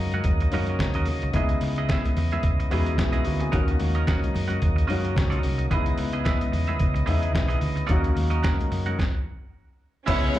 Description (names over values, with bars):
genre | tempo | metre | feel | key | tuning
disco | 110 BPM | 4/4 | swing 56% on 16ths | unclear | A4 = 441 Hz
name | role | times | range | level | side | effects
clean electric guitar | accompaniment | 0.0-10.4 s | B3 to F#5 | -33 LUFS | right 7 dB | spring reverb, plate reverb, slapback echo
warm grand piano | accompaniment | 0.0-10.4 s | C#3 to G#4 | -31 LUFS | left 4 dB | plate reverb, slapback echo
percussive tonewheel organ | sustained chords | 0.0-10.4 s | C#3 to D#5 | -32 LUFS | right 1 dB | overdrive, slow rotary speaker, plate reverb
vintage muted fingered electric bass | bass | 0.0-10.3 s | B1 to F#2 | -25 LUFS | equal | none
lo-fi sampler-style drum kit | drums | 0.1-10.4 s | crash cymbal, hi-hat, kick drum, snare drum | -26 LUFS | equal | none
congas | percussion | 0.1-10.4 s | none | -36 LUFS | left 6 dB | none
clear studio string section | second line | 10.1-10.4 s | C#4 to C#5 | -27 LUFS | equal | none
room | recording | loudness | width
light reverb | live gig heard through the venue's PA, club reverb | -22 LUFS | side -14 dB against mid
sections
0.0-10.1 A section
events
stop 9.0-10.1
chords
0.0 D#m7; 1.3 C#m9; 3.5 D#m7; 5.7 C#m9; 7.9 D#m7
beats
0.25 0.80 | 1.34 1.89 2.43 2.98 | 3.53 4.07 4.62 5.17 | 5.71 6.26 6.80 7.35 | 7.90 8.44 8.99 9.54 | 10.08